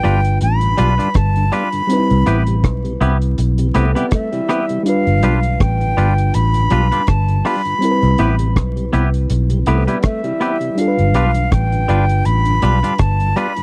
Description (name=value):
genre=lovers rock reggae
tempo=81 BPM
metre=4/4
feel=swing 55% on 16ths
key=C major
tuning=A4 = 439 Hz
part: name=breathy silver concert flute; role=melody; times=0.0-13.6 s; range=E5 to B5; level=-23 LUFS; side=equal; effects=none
part: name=FM electric piano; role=accompaniment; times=0.0-13.6 s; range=G3 to B4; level=-25 LUFS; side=equal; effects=none
part: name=mellow tonewheel organ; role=accompaniment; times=0.0-13.6 s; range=G2 to F4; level=-28 LUFS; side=equal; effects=slow rotary speaker
part: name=twangy electric guitar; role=stabs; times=0.0-13.5 s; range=G3 to B4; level=-22 LUFS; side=equal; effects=none
part: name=vintage muted fingered electric bass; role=bass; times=0.0-13.3 s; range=G1 to C2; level=-18 LUFS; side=equal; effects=none
part: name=deep reggae drum kit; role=drums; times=0.0-13.6 s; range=hi-hat, kick drum, rim click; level=-21 LUFS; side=equal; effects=none
part: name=electric guitar through a small old amp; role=arpeggios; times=3.7-4.8, 9.7-10.8 s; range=E3 to C4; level=-25 LUFS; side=equal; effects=none
room=small room ambience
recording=dry, close 1970s-style studio recording, vinyl crackle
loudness=-16 LUFS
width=mono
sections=0.0-13.6 A section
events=none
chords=0.0 G7; 1.9 Cmaj7; 4.9 G7; 7.8 Cmaj7; 10.8 G7